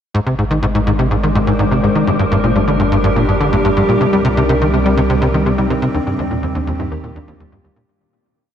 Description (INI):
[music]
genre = ambient, sequencer-driven space music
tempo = 124 BPM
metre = 4/4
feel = straight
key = Ab lydian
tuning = A4 = 440 Hz
[part]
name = evolving wavetable pad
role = sustained chords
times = 0.6-7.9 s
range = C3 to C5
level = -18 LUFS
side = left 1 dB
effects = chorus, built-in reverb, shimmer reverb
[part]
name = thumb-piano-like synth pluck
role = arpeggios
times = 0.1-7.8 s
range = F3 to Eb5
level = -26 LUFS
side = right 1 dB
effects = none
[part]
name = tight sequencer bass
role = riff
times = 0.1-7.8 s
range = Eb2 to G3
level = -16 LUFS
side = equal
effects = lush chorus, cassette tape, ping-pong delay
[part]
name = warm sub bass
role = bass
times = 0.1-7.9 s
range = G1 to Eb2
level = -22 LUFS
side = equal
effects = none
[part]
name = wind-like tuned noise texture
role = texture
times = 0.8-7.9 s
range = D4 to D5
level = -24 LUFS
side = equal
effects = built-in reverb, shimmer reverb
[sound]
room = wet huge ambient reverb, RT60 8.5 s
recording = dark, warm production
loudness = -13 LUFS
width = side -9 dB against mid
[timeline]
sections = 0.1-7.9 A section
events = fade-out 5.3-7.9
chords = 0.1 Ab; 2.1 Gm7; 4.0 Cm7; 6.0 Ebmaj7